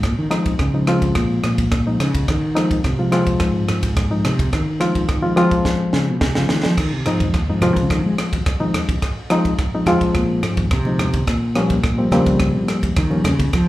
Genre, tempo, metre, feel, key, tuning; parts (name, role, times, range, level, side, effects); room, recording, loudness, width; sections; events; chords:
electric jazz fusion; 107 BPM; 4/4; straight; A4 = 440 Hz
fretless electric bass; bass; 0.0-13.7 s; Eb2 to Ab3; -20 LUFS; equal
crisp fusion drum kit; drums; 0.0-13.7 s; crash cymbal, kick drum, ride cymbal, rim click, snare drum; -21 LUFS; equal
reed electric piano; accompaniment; 0.3-13.5 s; F3 to F4; -19 LUFS; left 1 dB
congas; percussion; 7.2-13.5 s; -26 LUFS; right 1 dB
light reverb; live gig heard through the venue's PA, club reverb; -16 LUFS; side -16 dB against mid
0.0-13.7 A section
fretless electric bass solo 0.0-13.7; drum fill 5.7-6.8
0.0 Bb7sus4; 2.3 Fm7/Ab; 6.8 Bb7sus4 (rootless); 11.3 Eb7 (rootless)